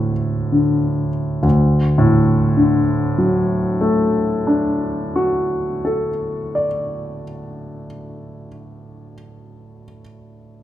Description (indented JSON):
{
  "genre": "classical, romantic nocturne for solo piano",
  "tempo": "34 BPM",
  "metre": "4/4",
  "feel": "rubato",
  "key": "D major",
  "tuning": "A4 = 440 Hz",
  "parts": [
    { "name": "warm grand piano", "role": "solo", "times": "0.0-10.6 s", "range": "D2 to D5", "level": "-16 LUFS", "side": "equal", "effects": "none" }
  ],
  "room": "moderate recital hall reverb, RT60 1.5 s",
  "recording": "minimal, uncompressed stereo recording",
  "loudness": "-15 LUFS",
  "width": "side -12 dB against mid",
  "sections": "0.0-1.4 A section; 1.4-8.5 B section",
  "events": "slowing down 0.0-1.4",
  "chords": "0.0 D5; 1.4 D"
}